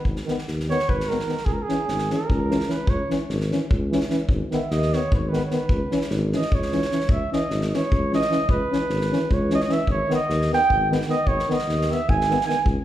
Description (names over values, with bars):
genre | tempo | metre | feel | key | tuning
balkan folk, Balkan brass band | 300 BPM (eighths) | 7/8 | straight | C# dorian sharp4 | A4 = 440 Hz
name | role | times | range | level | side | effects
mellow flugelhorn | second line | 0.0-12.6 s | G#4 to G#5 | -25 LUFS | right 3 dB | none
mellow tuba | bass | 0.0-12.8 s | G#1 to D#2 | -26 LUFS | left 1 dB | none
unplugged drum kit | percussion | 0.1-12.8 s | kick drum, snare drum | -26 LUFS | equal | none
mellow euphonium | accompaniment | 0.3-12.5 s | D#3 to E3 | -30 LUFS | right 3 dB | none
warm euphonium | accompaniment | 0.3-12.6 s | B3 to C#4 | -28 LUFS | left 3 dB | none
room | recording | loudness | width
moderate recital hall reverb, RT60 1.5 s | heard from further back in the room | -20 LUFS | side -13 dB against mid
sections
0.0-12.8 A section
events
flugelhorn solo 0.0-12.8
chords
0.0 G#m; 1.5 C#m; 4.3 G#m; 5.7 C#m; 9.9 G#m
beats
| 0.05 0.26 0.46 0.66 0.86 1.06 1.26 | 1.47 1.67 1.87 2.07 2.27 2.47 2.67 | 2.88 3.08 3.28 3.48 3.68 3.88 4.08 | 4.29 4.49 4.69 4.89 5.09 5.29 5.49 | 5.69 5.89 6.09 6.29 6.49 6.69 6.89 | 7.09 7.29 7.49 7.69 7.89 8.09 8.29 | 8.49 8.69 8.89 9.09 9.29 9.48 9.68 | 9.88 10.08 10.28 10.48 10.68 10.87 11.07 | 11.27 11.47 11.66 11.86 12.06 12.26 12.45 | 12.65